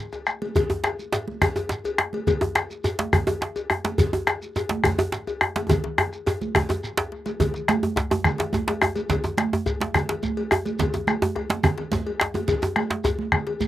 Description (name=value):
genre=west african traditional, West African drum ensemble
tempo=141 BPM (dotted quarters)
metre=12/8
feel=straight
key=none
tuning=none
part: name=bombo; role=percussion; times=0.1-13.5 s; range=none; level=-23 LUFS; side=left 2 dB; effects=none
part: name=cowbell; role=percussion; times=0.1-13.6 s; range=none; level=-30 LUFS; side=left 5 dB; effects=slapback echo
part: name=djembe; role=percussion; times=0.1-13.7 s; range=none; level=-32 LUFS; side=left 2 dB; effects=none
part: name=shekere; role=percussion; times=0.1-13.7 s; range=none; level=-35 LUFS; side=right 1 dB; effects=none
part: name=congas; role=percussion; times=0.3-13.7 s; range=none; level=-28 LUFS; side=right 5 dB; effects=none
part: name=djembe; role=percussion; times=0.6-13.2 s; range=none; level=-25 LUFS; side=right 2 dB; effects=none
room=light reverb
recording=recorded outdoors, with no room sound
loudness=-22 LUFS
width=side -14 dB against mid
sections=0.0-7.4 A section; 7.4-13.7 B section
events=drum fill 5.7-7.4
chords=none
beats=0.13 | 0.56 0.99 1.42 1.85 | 2.27 2.70 3.13 3.56 | 3.99 4.42 4.84 5.27 | 5.70 6.12 6.55 6.97 | 7.40 7.83 8.25 8.68 | 9.10 9.52 9.95 10.37 | 10.79 11.21 11.64 12.06 | 12.48 12.90 13.32